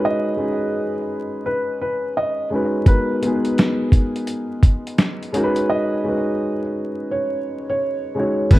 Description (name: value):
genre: lo-fi hip hop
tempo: 85 BPM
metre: 4/4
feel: swing 66% on 16ths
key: unclear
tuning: A4 = 439 Hz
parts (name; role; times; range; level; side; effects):
- felt-muted upright piano; melody; 0.0-8.6 s; B4 to D#5; -24 LUFS; right 1 dB; low-pass filter, tape echo
- dark upright piano; accompaniment; 0.0-8.6 s; G#3 to C#5; -22 LUFS; equal; cassette tape, low-pass filter
- dusty soul sampler-style drum kit; drums; 2.9-8.6 s; crash cymbal, hi-hat, kick drum, snare drum; -14 LUFS; equal; none
- smooth gliding synth bass; bass; 8.5-8.6 s; G#1; -14 LUFS; equal; none
room: little or no reverb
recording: dark, warm production, vinyl crackle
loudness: -18 LUFS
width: side -17 dB against mid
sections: 0.0-8.5 A section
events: break 5.7-8.5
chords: 0.0 C#9sus4; 2.9 G#m9; 5.3 C#9sus4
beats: | 0.04 0.74 1.45 2.16 | 2.86 3.57 4.27 4.98 | 5.69 6.39 7.10 7.80 | 8.51